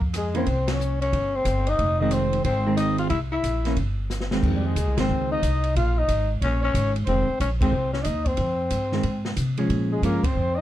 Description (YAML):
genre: jazz, small-group swing and bop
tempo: 182 BPM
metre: 4/4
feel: swing 64% on 8ths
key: F minor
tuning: A4 = 440 Hz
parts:
  - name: upright bass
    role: bass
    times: 0.0-10.6 s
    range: F1 to C3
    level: -25 LUFS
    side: equal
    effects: none
  - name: open jazz drum kit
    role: drums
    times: 0.0-10.3 s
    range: crash cymbal, hi-hat, kick drum, ride cymbal, rim click, snare drum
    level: -30 LUFS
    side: equal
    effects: none
  - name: growling tenor saxophone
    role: melody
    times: 0.2-10.6 s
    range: G3 to F4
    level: -26 LUFS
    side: left 4 dB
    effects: none
  - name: breathy trumpet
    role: second line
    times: 0.2-10.6 s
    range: G4 to F5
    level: -32 LUFS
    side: right 3 dB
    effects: none
  - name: hollow-body jazz guitar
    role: accompaniment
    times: 0.3-10.2 s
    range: Eb3 to Db4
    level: -25 LUFS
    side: right 2 dB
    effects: none
room: light reverb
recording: dark, warm production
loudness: -21 LUFS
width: side -13 dB against mid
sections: 0.0-4.4 A section; 4.4-10.6 A section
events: band accent 0.6, 4.9, 7.6, 10.2; drum fill 4.1-4.4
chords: 0.5 C5; 1.8 Fm7; 3.1 C7; 4.4 Fm7; 5.7 Bbm7; 7.1 Fm7; 9.7 Bbm7